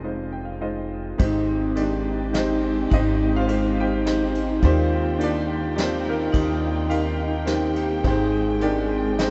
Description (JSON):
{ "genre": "acoustic folk-pop ballad", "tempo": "105 BPM", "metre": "3/4", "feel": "straight", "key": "unclear", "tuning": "A4 = 441 Hz", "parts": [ { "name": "clear upright piano", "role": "melody", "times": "0.0-9.3 s", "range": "F1 to G5", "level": "-28 LUFS", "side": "equal", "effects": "none" }, { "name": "upright bass", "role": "bass", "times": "0.0-9.3 s", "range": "F1 to Eb2", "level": "-29 LUFS", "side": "equal", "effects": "none" }, { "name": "mellow French horn", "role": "second line", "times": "1.2-9.3 s", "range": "Eb4 to Ab4", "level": "-30 LUFS", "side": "equal", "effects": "none" }, { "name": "dark chamber string section", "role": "sustained chords", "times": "1.2-9.3 s", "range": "Eb3 to G5", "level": "-36 LUFS", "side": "equal", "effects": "none" }, { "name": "vibraphone with hard mallets", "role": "arpeggios", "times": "1.2-9.3 s", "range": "Ab3 to G4", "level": "-29 LUFS", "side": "equal", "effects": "none" }, { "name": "soft brush drum kit", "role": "drums", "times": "1.2-9.3 s", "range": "kick drum, ride cymbal, snare drum", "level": "-29 LUFS", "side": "equal", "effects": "none" } ], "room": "wet huge ambient reverb, RT60 7.9 s", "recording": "in a vast, echoing space, nothing above 8.0 kHz", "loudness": "-23 LUFS", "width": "mono", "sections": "0.0-1.2 A section; 1.2-9.3 B section", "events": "upright piano fill 0.1-1.2", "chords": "0.0 Fm7; 1.2 Abmaj7; 4.6 Ebmaj7; 8.0 Abmaj7" }